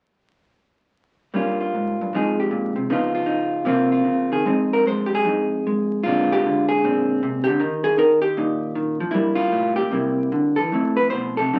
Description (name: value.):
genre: solo jazz.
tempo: 153 BPM.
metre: 4/4.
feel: swing 66% on 8ths, rubato.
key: F minor.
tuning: A4 = 440 Hz.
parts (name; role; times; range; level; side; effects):
vintage hollow-body jazz guitar; solo; 1.3-11.6 s; F2 to C5; -21 LUFS; equal; none.
room: wet club reverb, RT60 0.5 s.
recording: very old 78 rpm record, vinyl crackle.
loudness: -21 LUFS.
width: mono.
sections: 1.3-4.5 A section; 4.5-11.6 B section.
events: none.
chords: 1.3 Gm7b5; 2.1 Fm7; 2.9 Db9; 3.6 C7sus4; 4.5 Fm7; 6.0 Bb9; 7.6 Eb; 9.1 Gm7; 9.9 C9; 10.7 Fmaj7.